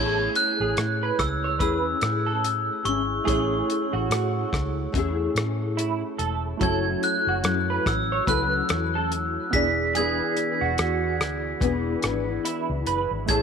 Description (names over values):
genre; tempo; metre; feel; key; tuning
indie pop, bedroom pop; 72 BPM; 4/4; swing 60% on 16ths; A major; A4 = 438 Hz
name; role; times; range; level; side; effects
glockenspiel with hard plastic mallets; melody; 0.0-13.4 s; C#6 to B6; -27 LUFS; equal; lush chorus
electric guitar through a small old amp; second line; 0.0-13.4 s; E4 to C#5; -30 LUFS; right 9 dB; ensemble chorus, tape echo
nylon-string guitar; accompaniment; 0.0-13.4 s; E3 to A4; -29 LUFS; left 10 dB; ensemble chorus, warbly pitch drift
warm analog keys; accompaniment; 0.0-13.4 s; A3 to D5; -32 LUFS; right 11 dB; chorus
vintage muted fingered electric bass; bass; 0.0-13.4 s; E1 to A2; -29 LUFS; equal; none
damped 70s drum kit; drums; 0.4-13.4 s; hi-hat, kick drum, rim click, shaker; -29 LUFS; left 1 dB; none
room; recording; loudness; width
light reverb, small room reverb; 1960s-style stereo with parts hard left and right; -22 LUFS; side -6 dB against mid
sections
0.0-13.4 A section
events
none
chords
0.0 Amaj7; 6.6 F#m7; 9.5 E7